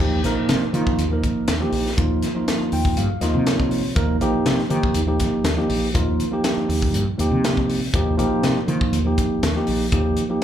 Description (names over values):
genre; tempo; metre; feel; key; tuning
electric jazz fusion; 121 BPM; 4/4; straight; Eb major; A4 = 441 Hz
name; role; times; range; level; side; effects
tine electric piano; accompaniment; 0.0-10.4 s; F3 to G5; -21 LUFS; right 1 dB; wide subtle chorus, plate reverb, slapback echo
woody fretless electric bass; bass; 0.0-10.2 s; Bb1 to Eb3; -23 LUFS; equal; none
crisp fusion drum kit; drums; 0.2-10.4 s; hi-hat, kick drum, snare drum; -24 LUFS; equal; none
room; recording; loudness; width
light reverb; live gig heard through the venue's PA, club reverb; -18 LUFS; side -10 dB against mid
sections
0.0-10.4 A section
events
tine electric piano fill 2.5-4.0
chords
0.0 Eb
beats
0.49 0.99 1.48 | 1.98 2.47 2.97 3.46 | 3.96 4.46 4.95 5.45 | 5.95 6.44 6.94 7.44 | 7.93 8.43 8.93 9.43 | 9.92 10.42